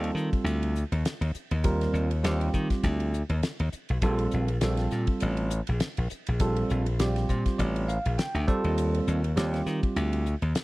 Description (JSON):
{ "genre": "electric jazz fusion", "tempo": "101 BPM", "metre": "4/4", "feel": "swing 56% on 16ths", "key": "unclear", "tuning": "A4 = 440 Hz", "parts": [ { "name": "bell-like tine electric piano", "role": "accompaniment", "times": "0.0-10.2 s", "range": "G3 to A5", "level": "-30 LUFS", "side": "right 2 dB", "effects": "phaser" }, { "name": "glassy slap bass", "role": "bass", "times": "0.0-10.5 s", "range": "A1 to Eb3", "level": "-27 LUFS", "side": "equal", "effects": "none" }, { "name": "damped 70s drum kit", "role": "drums", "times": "0.0-10.6 s", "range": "hi-hat, kick drum, ride cymbal, snare drum", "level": "-31 LUFS", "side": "left 1 dB", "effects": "none" } ], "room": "studio reverb", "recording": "dry, close 1970s-style studio recording", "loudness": "-25 LUFS", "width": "side -20 dB against mid", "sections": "0.0-10.6 A section", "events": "tine electric piano fill 7.0-8.8", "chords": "0.0 Ebmaj9; 4.0 Bbmaj7sus2; 8.5 Ebmaj9" }